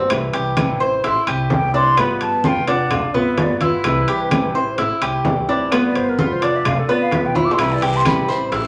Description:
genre	latin, Cuban son and guajira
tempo	128 BPM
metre	4/4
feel	straight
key	C major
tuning	A4 = 440 Hz
part	flamenco guitar	accompaniment	0.0-8.6 s	C3 to F4	-26 LUFS	equal	none
part	Cuban tres	arpeggios	0.0-8.7 s	B3 to C5	-22 LUFS	equal	none
part	upright bass	bass	0.0-8.6 s	F1 to D2	-29 LUFS	equal	none
part	bongos	percussion	0.1-8.7 s	none	-32 LUFS	equal	none
part	claves	percussion	0.1-8.3 s	none	-35 LUFS	equal	none
part	congas	percussion	0.1-8.7 s	none	-26 LUFS	equal	none
part	timbales	percussion	0.1-8.7 s	none	-30 LUFS	equal	none
part	breathy mellow silver concert flute	melody	1.1-8.5 s	A4 to D6	-24 LUFS	equal	none
part	guiro	percussion	7.6-8.7 s	none	-36 LUFS	equal	none
room	wet large studio reverb, RT60 0.9 s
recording	none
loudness	-18 LUFS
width	mono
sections	0.1-8.7 A section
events	flute solo 0.1-8.7; drum fill 7.4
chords	0.1 C; 2.0 G7; 3.8 C; 5.7 G7; 7.6 C

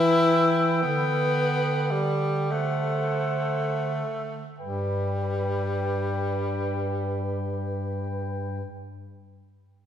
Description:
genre	classical, lyrical piece for single-reed quartet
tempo	26-42 BPM (dotted quarters)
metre	6/8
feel	rubato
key	G major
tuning	A4 = 442 Hz
part	clear clarinet	melody	0.0-8.6 s	F#5 to G5	-34 LUFS	left 3 dB	none
part	warm alto saxophone	second line	0.0-8.6 s	B4 to C5	-34 LUFS	right 3 dB	none
part	clear tenor saxophone	accompaniment	0.0-8.6 s	G3 to E4	-27 LUFS	left 1 dB	none
part	mellow bass clarinet	bass	0.0-8.6 s	G2 to E3	-28 LUFS	equal	none
room	wet scoring stage reverb, RT60 2.0 s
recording	heard from further back in the room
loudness	-24 LUFS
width	side -9 dB against mid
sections	0.0-4.6 A section; 4.6-8.7 B section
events	slowing down 0.0-4.6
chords	0.0 Em; 0.8 G/D; 2.5 D7; 4.6 G

